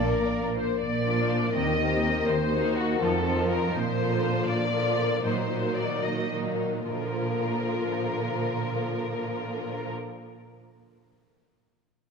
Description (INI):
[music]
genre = classical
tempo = 69-83 BPM (dotted quarters)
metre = 6/8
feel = straight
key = Bb major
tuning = A4 = 440 Hz
[part]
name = rich symphonic violin section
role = melody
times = 0.0-9.9 s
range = Gb4 to Eb5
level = -31 LUFS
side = left 3 dB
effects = none
[part]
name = clear oboe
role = second line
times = 0.0-0.5 s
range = D5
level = -41 LUFS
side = equal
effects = none
[part]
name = mellow flute section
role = second line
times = 0.0-0.6 s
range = F5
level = -41 LUFS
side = right 7 dB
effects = none
[part]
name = warm clarinet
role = second line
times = 0.0-0.5 s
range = Bb4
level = -39 LUFS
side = right 2 dB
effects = none
[part]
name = warm symphonic violin section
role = second line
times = 0.0-9.9 s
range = Bb3 to D5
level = -33 LUFS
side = left 3 dB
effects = none
[part]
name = dark symphonic viola section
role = accompaniment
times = 0.0-9.9 s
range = D3 to Bb3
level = -32 LUFS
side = right 2 dB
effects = none
[part]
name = mellow French horn section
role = sustained chords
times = 0.0-0.6 s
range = Bb3 to D4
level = -38 LUFS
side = left 3 dB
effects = none
[part]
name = concert harp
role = arpeggios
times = 0.0-10.8 s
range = Bb2 to Bb5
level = -32 LUFS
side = left 5 dB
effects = none
[part]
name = warm studio cello section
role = bass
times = 0.0-9.9 s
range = Eb2 to Bb2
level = -31 LUFS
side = right 4 dB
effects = none
[part]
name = warm symphonic double bass section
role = bass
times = 0.0-0.6 s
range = Bb1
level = -37 LUFS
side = right 2 dB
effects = none
[sound]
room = wet concert hall reverb, RT60 2.2 s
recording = none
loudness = -24 LUFS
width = side -5 dB against mid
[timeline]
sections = 0.8-6.9 A section; 6.9-10.2 B section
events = slowing down 3.0-6.9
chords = 0.0 Bb; 1.6 Eb6; 2.3 Ebm; 3.0 F7; 3.7 Bb; 5.2 Ebm/Bb; 6.9 Bb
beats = 0.07 | 0.81 1.55 | 2.28 3.01 | 3.74 4.47 | 5.24 6.04 | 6.89 7.72 | 8.54 9.36